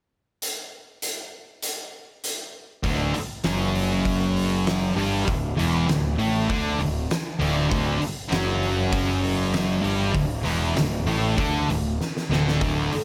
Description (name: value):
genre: garage rock duo or trio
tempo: 98 BPM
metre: 4/4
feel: straight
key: D major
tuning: A4 = 440 Hz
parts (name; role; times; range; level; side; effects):
- oversized low-tuned drum kit; drums; 0.4-13.0 s; hi-hat, kick drum, snare drum; -31 LUFS; equal; none
- thick fuzz guitar; riff; 2.8-13.0 s; D2 to D4; -26 LUFS; equal; distortion
- fuzz picked electric bass; bass; 2.8-12.9 s; D1 to D2; -30 LUFS; equal; overdrive
room: light reverb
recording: none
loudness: -24 LUFS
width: mono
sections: 0.4-2.8 A section; 2.8-13.0 B section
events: drum fill 12.0-12.6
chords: 0.4 N.C.; 2.8 D